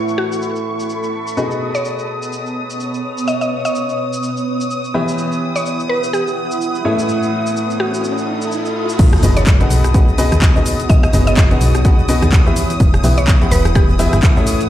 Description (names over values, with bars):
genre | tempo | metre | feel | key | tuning
piano house | 126 BPM | 4/4 | swing 58% on 16ths | B mixolydian | A4 = 444 Hz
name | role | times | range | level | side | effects
string machine, violins | sustained chords | 0.0-14.7 s | C#6 to D#6 | -26 LUFS | equal | ensemble chorus, sidechain pumping
clear upright piano | riff | 0.0-14.6 s | A2 to F#5 | -21 LUFS | left 2 dB | sidechain pumping, low-pass filter, tape echo
granular cloud pad | texture | 0.0-14.7 s | B3 to B5 | -23 LUFS | right 1 dB | built-in reverb, sidechain pumping
house drum kit | drums | 0.1-14.7 s | crash cymbal, handclaps, hi-hat, rim click, shaker | -25 LUFS | equal | overdrive, low-pass filter on cymbals, low-pass filter on perc, low-pass filter on hats, low-pass filter on snare
mallet-like synth pluck | melody | 0.2-13.9 s | F#4 to D#5 | -23 LUFS | equal | chorus, vintage 12-bit sampler grit, tape echo
riser and impact | sound effects | 7.1-10.9 s | none | -23 LUFS | equal | none
solid FM bass | bass | 9.0-14.2 s | E1 to D#2 | -15 LUFS | equal | tube saturation, sidechain pumping
electronic kick drum | drums | 9.0-14.3 s | none | -12 LUFS | equal | overdrive
room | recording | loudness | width
light reverb, digital ambience | played on a big sound system in a bare room, large studio reverb | -13 LUFS | side -12 dB against mid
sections
0.0-9.0 A section; 9.0-14.7 B section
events
riser 7.1-9.0; drop 9.0-14.7; impact 9.0-10.9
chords
0.0 A; 1.4 B6; 4.9 Em; 6.8 A; 9.0 B6; 12.6 Em